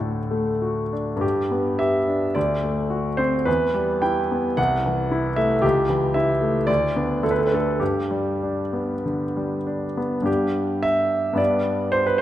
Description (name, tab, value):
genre	classical, romantic character piece for solo piano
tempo	94-116 BPM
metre	4/4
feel	rubato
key	G major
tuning	A4 = 440 Hz
part	clear grand piano	solo	0.0-12.2 s	C2 to G5	-20 LUFS	equal	none
room	wet recital hall reverb, RT60 1.4 s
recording	none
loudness	-20 LUFS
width	side -12 dB against mid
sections	0.0-10.3 A section; 10.3-12.2 A section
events	none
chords	0.0 D; 1.2 G; 2.4 D7; 3.5 Em; 4.6 Am/C; 5.6 A7/C#; 6.7 Bm/D; 7.2 D5; 7.8 G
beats	0.00 0.62 | 1.23 1.80 2.36 2.91 | 3.47 4.03 4.58 5.11 | 5.64 6.16 6.68 7.23 | 7.80 8.42 9.05 9.67 | 10.27 10.83 11.39 11.93